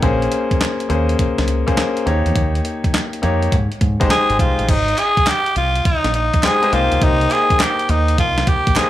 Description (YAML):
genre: R&B, new jack swing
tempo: 103 BPM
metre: 4/4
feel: swing 67% on 16ths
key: unclear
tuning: A4 = 437 Hz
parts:
  - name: clear concert grand piano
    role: accompaniment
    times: 0.0-8.9 s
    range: Ab3 to Db5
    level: -20 LUFS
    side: left 3 dB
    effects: none
  - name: deep dub fingered electric bass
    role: bass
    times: 0.0-8.7 s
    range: Ab1 to Ab2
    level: -19 LUFS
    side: equal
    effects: none
  - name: crisp 8-bit digital drum machine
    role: drums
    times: 0.0-8.9 s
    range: crash cymbal, handclaps, hi-hat, kick drum, snare drum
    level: -19 LUFS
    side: equal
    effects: none
  - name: growling tenor saxophone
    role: melody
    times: 4.1-8.9 s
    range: Eb4 to Ab4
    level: -17 LUFS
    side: equal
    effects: none
  - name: group handclap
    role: percussion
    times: 5.0-8.9 s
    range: none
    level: -27 LUFS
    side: right 3 dB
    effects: none
room: light reverb, small room ambience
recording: none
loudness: -14 LUFS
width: side -13 dB against mid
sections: 0.0-4.7 A section; 4.7-8.9 B section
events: none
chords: 0.0 Bbm9; 2.1 Eb7; 3.5 Abmaj7; 6.7 Cm7